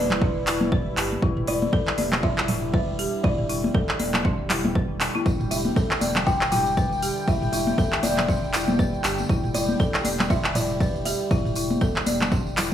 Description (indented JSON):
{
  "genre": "afro house",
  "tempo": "119 BPM",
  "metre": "4/4",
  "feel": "swing 58% on 16ths",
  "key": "E minor",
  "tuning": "A4 = 442 Hz",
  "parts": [
    { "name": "buzzing kalimba", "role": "melody", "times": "0.0-12.7 s", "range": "B4 to G5", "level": "-29 LUFS", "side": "left 1 dB", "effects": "digital delay" },
    { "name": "warm analog pad", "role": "sustained chords", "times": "0.0-12.7 s", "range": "D3 to G5", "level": "-31 LUFS", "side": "equal", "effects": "wide subtle chorus, sidechain pumping" },
    { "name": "folk marimba with hard mallets", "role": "arpeggios", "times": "0.0-12.7 s", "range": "D4 to D5", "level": "-30 LUFS", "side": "left 3 dB", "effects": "sidechain pumping, digital delay" },
    { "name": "round analog bass", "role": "bass", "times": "0.0-12.7 s", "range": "D1 to G1", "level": "-33 LUFS", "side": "equal", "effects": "sidechain pumping" },
    { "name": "afro-pop drum kit", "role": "drums", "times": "0.1-12.7 s", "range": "handclaps, hi-hat, toms", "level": "-26 LUFS", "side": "equal", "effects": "none" },
    { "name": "congas", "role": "percussion", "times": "0.1-12.7 s", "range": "none", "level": "-27 LUFS", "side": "left 1 dB", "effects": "none" },
    { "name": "electronic kick drum", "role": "drums", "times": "0.2-12.4 s", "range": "none", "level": "-24 LUFS", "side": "equal", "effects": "none" },
    { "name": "tambourine", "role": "percussion", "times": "5.3-12.7 s", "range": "none", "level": "-37 LUFS", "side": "right 4 dB", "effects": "none" }
  ],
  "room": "light reverb",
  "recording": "small room reverb",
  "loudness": "-21 LUFS",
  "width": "side -10 dB against mid",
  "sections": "0.0-12.7 A section",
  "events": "none",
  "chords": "0.0 Em7"
}